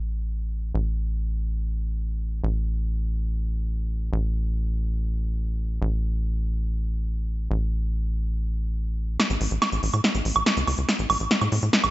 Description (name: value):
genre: psychedelic trance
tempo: 142 BPM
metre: 4/4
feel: straight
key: A major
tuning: A4 = 440 Hz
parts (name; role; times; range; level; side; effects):
- tight sequencer bass; bass; 0.0-11.9 s; A1 to A2; -25 LUFS; equal; none
- big-room dance drum kit; drums; 9.2-11.9 s; hi-hat, snare drum, woodblock; -22 LUFS; right 1 dB; low-pass filter on snare, low-pass filter on hats, low-pass filter on perc, low-pass filter on room
room: light reverb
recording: nothing above 7.9 kHz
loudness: -23 LUFS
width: side -17 dB against mid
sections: 0.0-9.2 A section; 9.2-11.9 B section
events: build-up 9.2-11.9; drum fill 9.2-11.9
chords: none